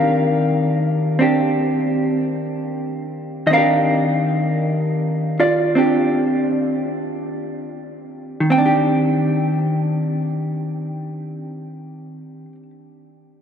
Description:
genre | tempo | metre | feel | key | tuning
jazz ballad | 40-65 BPM | 4/4 | swing 68% on 8ths | Eb major | A4 = 441 Hz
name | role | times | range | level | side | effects
vintage hollow-body jazz guitar | solo | 0.0-12.7 s | Eb3 to G5 | -17 LUFS | equal | none
room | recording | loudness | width
wet cathedral reverb, RT60 6.3 s | in a vast, echoing space | -17 LUFS | side -8 dB against mid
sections
0.0-8.5 A section; 8.5-13.4 B section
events
slowing down 0.0-8.5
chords
0.0 Ebmaj13; 8.5 Eb6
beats
0.55 1.49 2.46 | 3.48 4.57 5.74 7.03 | 8.47 9.96 11.45

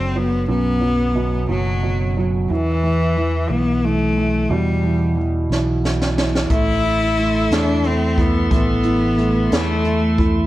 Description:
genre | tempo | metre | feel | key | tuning
six-eight pop ballad | 60 BPM (dotted quarters) | 6/8 | straight | unclear | A4 = 437 Hz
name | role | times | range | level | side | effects
clear cello | melody | 0.0-10.3 s | E3 to E4 | -20 LUFS | left 2 dB | slapback echo
felt-muted upright piano | accompaniment | 0.0-10.5 s | F#2 to E4 | -22 LUFS | right 3 dB | none
fingered electric bass | bass | 0.0-10.5 s | F#1 to E2 | -21 LUFS | equal | none
jazz brush drum kit | drums | 5.5-10.3 s | hi-hat, kick drum, snare drum | -21 LUFS | equal | none
bright tonewheel organ | sustained chords | 6.5-10.5 s | A4 to C6 | -27 LUFS | equal | slow rotary speaker
room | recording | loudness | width
light reverb, studio reverb | worn, warbling old tape, cassette tape, warbly pitch drift | -16 LUFS | side -15 dB against mid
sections
0.0-10.5 A section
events
drum fill 5.5-6.5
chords
0.0 Bm; 2.5 E5; 6.5 Am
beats
| 0.49 1.49 | 2.49 3.50 | 4.50 5.50 | 6.50 7.51 | 8.51 9.51

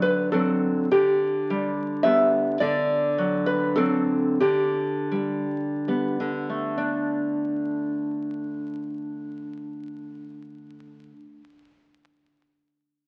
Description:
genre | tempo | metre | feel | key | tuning
romantic piece for solo classical guitar | 63-108 BPM | 3/4 | rubato | D major | A4 = 440 Hz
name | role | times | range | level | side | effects
nylon-string guitar | solo | 0.0-11.7 s | D3 to E5 | -25 LUFS | equal | none
room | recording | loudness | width
moderate large studio reverb, RT60 1.1 s | very old 78 rpm record, vinyl crackle | -25 LUFS | mono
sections
0.0-6.8 A section; 6.8-12.0 B section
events
slowing down 1.8-6.8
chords
0.0 D7; 0.9 G/D; 2.6 D7; 4.4 G/D; 6.8 D5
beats
0.32 | 0.91 1.48 2.04 | 2.60 3.18 3.77 | 4.41 5.09 5.88 | 6.79 7.64 8.50 | 9.36 10.25 11.11

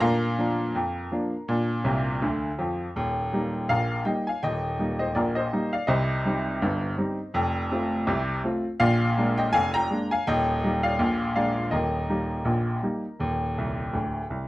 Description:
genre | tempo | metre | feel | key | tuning
ragtime piano | 82 BPM | 2/4 | swing 56% on 16ths | Eb major | A4 = 441 Hz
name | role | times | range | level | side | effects
bright upright piano | solo | 0.0-14.5 s | D1 to Bb5 | -23 LUFS | equal | none
room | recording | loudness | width
light reverb | close, detailed microphones | -23 LUFS | side -18 dB against mid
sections
0.0-3.0 A section; 3.0-14.5 B section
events
upright piano fill 1.9-3.0, 13.6-14.5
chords
0.0 Bb; 3.0 Eb; 5.9 Cm; 7.3 F7; 8.8 Bb7; 10.3 Eb; 11.0 Bb7; 11.7 Eb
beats
| 0.01 0.75 | 1.48 2.22 | 2.95 3.69 | 4.42 5.15 | 5.88 6.61 | 7.34 8.07 | 8.80 9.53 | 10.26 10.99 | 11.73 12.46 | 13.20 13.93

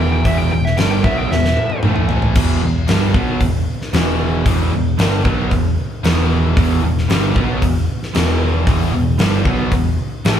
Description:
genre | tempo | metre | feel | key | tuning
hard rock | 114 BPM | 4/4 | straight | unclear | A4 = 439 Hz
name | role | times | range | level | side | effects
dark smooth lead guitar | melody | 0.0-1.8 s | E5 to G5 | -22 LUFS | right 1 dB | overdrive
cranked stack guitar | riff | 0.0-10.4 s | E2 to B3 | -24 LUFS | equal | overdrive
overdriven semi-hollow guitar | riff | 0.0-10.4 s | E2 to B3 | -22 LUFS | right 8 dB | spring reverb
tight distorted guitar | riff | 0.0-10.4 s | E2 to B3 | -25 LUFS | left 7 dB | distortion
picked electric bass | bass | 0.0-10.4 s | E1 to B1 | -19 LUFS | equal | none
huge arena drum kit | drums | 0.3-10.4 s | crash cymbal, hi-hat, kick drum, snare drum, toms | -18 LUFS | left 1 dB | none
room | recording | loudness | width
moderate large studio reverb, RT60 0.9 s | band playing live in one room | -14 LUFS | side -9 dB against mid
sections
0.0-2.4 A section; 2.4-10.4 B section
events
lead electric guitar solo 0.0-2.4; drum fill 1.3-2.4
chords
0.0 E5; 1.8 A5; 2.4 E5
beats
| 0.26 0.78 1.31 1.84 | 2.37 2.89 3.42 3.94 | 4.47 5.00 5.52 6.05 | 6.57 7.10 7.63 8.15 | 8.68 9.20 9.73 10.26

